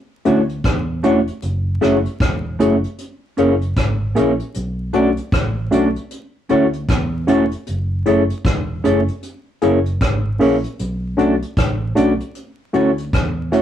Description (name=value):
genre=lovers rock reggae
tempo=77 BPM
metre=4/4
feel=swing 61% on 16ths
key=F# minor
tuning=A4 = 440 Hz
part: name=tine electric piano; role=accompaniment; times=0.3-13.6 s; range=A3 to G#4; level=-16 LUFS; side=left 2 dB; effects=overdrive, fast stereo tremolo
part: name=mellow electric guitar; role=stabs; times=0.3-13.6 s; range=A3 to D5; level=-20 LUFS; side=right 3 dB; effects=none
part: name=vintage muted fingered electric bass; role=bass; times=0.3-13.6 s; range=E1 to E2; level=-23 LUFS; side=equal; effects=none
part: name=soft brush drum kit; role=drums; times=0.3-13.6 s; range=hi-hat, kick drum, rim click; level=-21 LUFS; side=equal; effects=vintage 12-bit sampler grit
room=moderate small room reverb, RT60 0.5 s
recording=rough rehearsal-room recording, vinyl crackle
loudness=-16 LUFS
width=side -10 dB against mid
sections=0.0-13.6 A section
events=none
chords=0.0 Dmaj7; 1.4 F#m7; 3.0 F#7; 4.5 Bm7; 6.1 Dmaj7; 7.7 F#m7; 9.2 F#7; 10.8 Bm7; 12.4 Dmaj7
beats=0.64 | 1.42 2.20 2.98 3.76 | 4.54 5.33 6.11 6.89 | 7.67 8.45 9.23 10.01 | 10.79 11.57 12.35 13.13